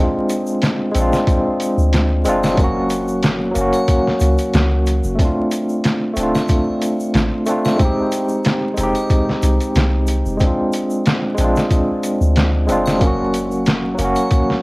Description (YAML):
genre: trip hop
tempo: 92 BPM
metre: 4/4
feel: swing 54% on 16ths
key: unclear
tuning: A4 = 440 Hz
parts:
  - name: barky tine electric piano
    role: accompaniment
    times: 0.0-14.6 s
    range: Gb3 to G4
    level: -17 LUFS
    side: equal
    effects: overdrive, tremolo, cassette tape, tape echo
  - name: trip hop sampler-style drum kit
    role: drums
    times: 0.3-14.6 s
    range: hi-hat, kick drum, snare drum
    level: -18 LUFS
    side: equal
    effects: studio reverb, cassette tape
  - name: tube shaker and triangle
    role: percussion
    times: 0.3-14.5 s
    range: none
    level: -36 LUFS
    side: left 2 dB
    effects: none
  - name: soft 808-style bass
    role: bass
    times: 1.0-14.1 s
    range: D1 to D2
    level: -19 LUFS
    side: equal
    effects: none
room: moderate spring reverb, RT60 2.3 s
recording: home recording on cassette, vinyl crackle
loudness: -15 LUFS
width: side -24 dB against mid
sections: 0.0-14.6 A section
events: none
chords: 0.0 Bb7 (rootless); 2.6 Gb; 5.2 Dm7; 7.8 Fm7 (rootless); 10.4 Bb7 (rootless); 13.0 Gb